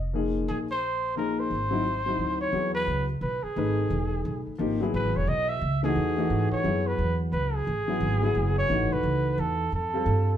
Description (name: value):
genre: modal jazz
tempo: 175 BPM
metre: 3/4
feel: swing 63% on 8ths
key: C# minor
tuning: A4 = 441 Hz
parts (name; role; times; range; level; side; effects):
- upright bass; bass; 0.0-10.4 s; E1 to G#2; -28 LUFS; right 1 dB; none
- warm grand piano; accompaniment; 0.1-10.4 s; E3 to B4; -29 LUFS; left 3 dB; none
- breathy trumpet; melody; 0.5-10.4 s; G#4 to E5; -29 LUFS; right 1 dB; none
room: wet studio reverb, RT60 0.8 s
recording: band playing live in one room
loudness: -24 LUFS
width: side -10 dB against mid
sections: 0.0-2.5 A section; 2.5-10.4 B section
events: none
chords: 0.0 Bb9sus4; 1.5 Ab7b13; 2.5 C#m9; 6.6 F#m9; 9.7 Fadd9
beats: 0.13 | 0.47 0.82 1.16 | 1.50 1.85 2.19 | 2.53 2.88 3.22 | 3.56 3.90 4.25 | 4.59 4.93 5.27 | 5.62 5.96 6.30 | 6.64 6.99 7.33 | 7.67 8.01 8.35 | 8.70 9.04 9.38 | 9.72 10.06